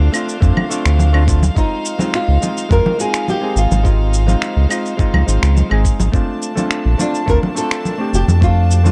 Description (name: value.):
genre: sunset chillout.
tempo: 105 BPM.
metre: 4/4.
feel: straight.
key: unclear.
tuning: A4 = 442 Hz.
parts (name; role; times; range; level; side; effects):
flamenco guitar; melody; 0.0-8.9 s; D4 to Bb4; -24 LUFS; equal; digital delay.
hollow-body jazz guitar; accompaniment; 0.0-8.9 s; Ab3 to Ab4; -24 LUFS; equal; digital delay.
bright chamber string section; sustained chords; 0.0-8.9 s; D4 to A5; -31 LUFS; equal; none.
round analog bass; bass; 0.0-8.9 s; F1 to F2; -15 LUFS; equal; none.
electronic claves, cabasa and finger snaps; drums; 0.1-8.9 s; none; -26 LUFS; equal; none.
electronic kick drum; drums; 0.4-8.5 s; none; -19 LUFS; equal; none.
congas; percussion; 0.6-8.9 s; none; -24 LUFS; equal; none.
room: digital ambience.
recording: dark, warm production.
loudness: -16 LUFS.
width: mono.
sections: 0.0-8.9 A section.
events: none.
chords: 0.0 Dm7; 1.6 Dbmaj9 (rootless); 6.1 Bbmaj7 (rootless).